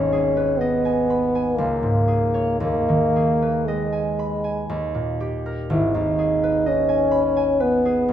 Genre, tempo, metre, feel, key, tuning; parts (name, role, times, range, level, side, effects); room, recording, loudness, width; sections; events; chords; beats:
classical, romantic duo for French horn and harp; 55-65 BPM; 3/4; rubato; G# minor; A4 = 440 Hz
clear French horn; melody; 0.0-8.1 s; G#3 to E4; -20 LUFS; left 1 dB
concert harp; accompaniment; 0.0-8.1 s; G#1 to B5; -23 LUFS; right 2 dB
wet recital hall reverb, RT60 1.4 s; minimal, uncompressed stereo recording; -18 LUFS; side -10 dB against mid
0.0-8.1 A section
0.0 G#m; 1.6 C#5; 2.6 G#m/D#; 4.7 D#; 5.7 G#m
0.60 1.58 | 2.62 3.69 4.72 | 5.73 6.69 7.62